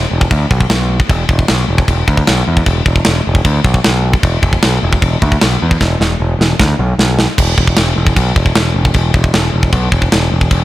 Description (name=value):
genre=heavy metal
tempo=153 BPM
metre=4/4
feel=straight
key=unclear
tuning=A4 = 440 Hz
part: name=growling picked electric bass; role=bass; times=0.0-10.6 s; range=E1 to E2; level=-14 LUFS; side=equal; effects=overdrive
part: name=tight metal drum kit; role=drums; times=0.2-10.6 s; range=crash cymbal, kick drum, snare drum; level=-13 LUFS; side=equal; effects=none
room=little or no reverb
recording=none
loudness=-10 LUFS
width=side -16 dB against mid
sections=0.0-7.4 A section; 7.4-10.6 B section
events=drum fill 5.8-7.4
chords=none